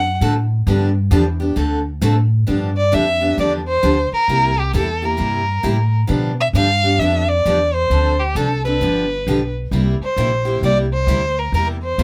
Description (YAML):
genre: acoustic string swing (jazz manouche)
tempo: 132 BPM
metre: 4/4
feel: swing 63% on 8ths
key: G mixolydian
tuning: A4 = 440 Hz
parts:
  - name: warm violin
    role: melody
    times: 0.0-12.0 s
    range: G4 to F#5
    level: -21 LUFS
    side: equal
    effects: none
  - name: upright bass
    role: bass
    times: 0.0-12.0 s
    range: G1 to B2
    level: -21 LUFS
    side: equal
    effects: none
  - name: picked steel-string acoustic guitar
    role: accompaniment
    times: 0.2-12.0 s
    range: C3 to A4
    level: -23 LUFS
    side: equal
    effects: none
room: light reverb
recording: close, detailed microphones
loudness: -17 LUFS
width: mono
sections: 0.0-2.5 A section; 2.5-12.0 B section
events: violin solo 0.0-2.5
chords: 0.0 D7; 0.7 G7; 1.6 D7; 2.5 G7; 4.3 C7; 6.1 G7; 7.9 Dm7; 8.8 G7; 9.7 C7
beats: 0.22 | 0.67 1.12 1.57 2.03 | 2.48 2.93 3.39 3.84 | 4.29 4.74 5.20 5.65 | 6.10 6.56 7.01 7.46 | 7.92 8.37 8.82 9.27 | 9.73 10.18 10.63 11.09 | 11.54 11.99